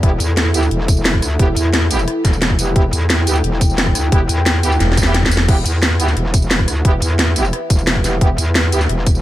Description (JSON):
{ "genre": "dark technical drum and bass", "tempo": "176 BPM", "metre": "4/4", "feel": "straight", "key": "E minor", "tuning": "A4 = 440 Hz", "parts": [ { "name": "dark analog pad", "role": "sustained chords", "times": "0.0-9.2 s", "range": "E4 to G5", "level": "-24 LUFS", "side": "equal", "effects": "chorus, phaser, sidechain pumping" }, { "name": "warm brass ensemble", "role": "stabs", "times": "0.0-8.8 s", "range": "B3 to G4", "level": "-24 LUFS", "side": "right 3 dB", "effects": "digital delay" }, { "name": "metallic wobble bass", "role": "bass", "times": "0.0-9.2 s", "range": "E1 to E2", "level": "-17 LUFS", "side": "equal", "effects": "chorus, tube saturation" }, { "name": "drum and bass drum kit", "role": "drums", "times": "0.0-9.2 s", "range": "crash cymbal, hi-hat, rim click, snare drum, tambourine", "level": "-18 LUFS", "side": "equal", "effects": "none" }, { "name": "electronic kick drum", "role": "drums", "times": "0.0-9.1 s", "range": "none", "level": "-14 LUFS", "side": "equal", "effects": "overdrive" }, { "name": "growling FM bass", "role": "bass", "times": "4.8-5.5 s", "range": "E1", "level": "-15 LUFS", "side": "equal", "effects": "none" } ], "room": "digital ambience", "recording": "none", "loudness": "-13 LUFS", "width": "side -14 dB against mid", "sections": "0.0-5.5 A section; 5.5-9.2 A section", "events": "drop 0.0-5.5, 5.5-9.2; drum fill 4.8-5.5", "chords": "0.0 Em" }